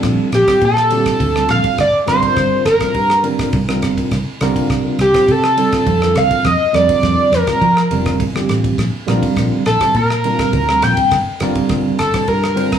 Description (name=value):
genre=electric jazz fusion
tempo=103 BPM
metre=4/4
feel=straight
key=unclear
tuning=A4 = 440 Hz
part: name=tine electric piano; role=accompaniment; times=0.0-12.8 s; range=D3 to C5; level=-19 LUFS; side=right 2 dB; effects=medium stereo tremolo
part: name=fingered electric bass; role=bass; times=0.0-12.8 s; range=F1 to F3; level=-20 LUFS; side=equal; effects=none
part: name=damped 70s drum kit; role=drums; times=0.0-12.8 s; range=kick drum, ride cymbal, rim click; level=-23 LUFS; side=equal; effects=none
part: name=overdriven synth lead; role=melody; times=0.3-12.8 s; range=G4 to G5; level=-14 LUFS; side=equal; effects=distortion, chorus
room=moderate large studio reverb, RT60 1.3 s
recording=band playing live in one room, small room ambience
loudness=-12 LUFS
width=side -8 dB against mid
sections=0.0-12.8 A section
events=none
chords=0.0 Bbmaj7; 1.8 Gm7; 4.1 C5; 6.5 Fsus4; 8.8 Bb; 11.1 Gm7